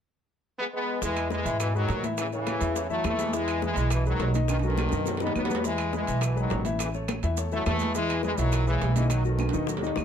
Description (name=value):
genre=latin, salsa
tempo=208 BPM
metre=4/4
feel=straight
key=E major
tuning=A4 = 440 Hz
part: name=brilliant trombone section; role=melody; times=0.6-9.8 s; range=B2 to B3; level=-30 LUFS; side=equal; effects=plate reverb
part: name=clear grand piano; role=accompaniment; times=1.0-10.0 s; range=D#3 to E5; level=-31 LUFS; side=left 6 dB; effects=none
part: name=upright bass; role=bass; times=1.0-10.0 s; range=A1 to A2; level=-28 LUFS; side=right 1 dB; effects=none
part: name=bongos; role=percussion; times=1.0-10.0 s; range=none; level=-39 LUFS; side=left 8 dB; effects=none
part: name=congas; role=percussion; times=1.0-10.0 s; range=none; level=-37 LUFS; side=equal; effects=none
part: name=maracas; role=percussion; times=1.0-10.0 s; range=none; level=-42 LUFS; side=right 9 dB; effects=none
part: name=claves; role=percussion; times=1.2-10.0 s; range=none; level=-42 LUFS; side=right 1 dB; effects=none
part: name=timbales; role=percussion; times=1.2-10.0 s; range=none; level=-36 LUFS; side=right 6 dB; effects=none
room=moderate studio reverb, RT60 0.7 s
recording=dark, warm production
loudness=-24 LUFS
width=side -8 dB against mid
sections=0.0-1.0 A section; 1.0-10.0 B section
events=drum fill 4.5-5.6, 9.4-10.0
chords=0.0 N.C.; 1.0 E; 2.2 A; 3.3 E; 4.5 B7; 5.6 E; 6.8 A; 8.0 E; 9.1 B7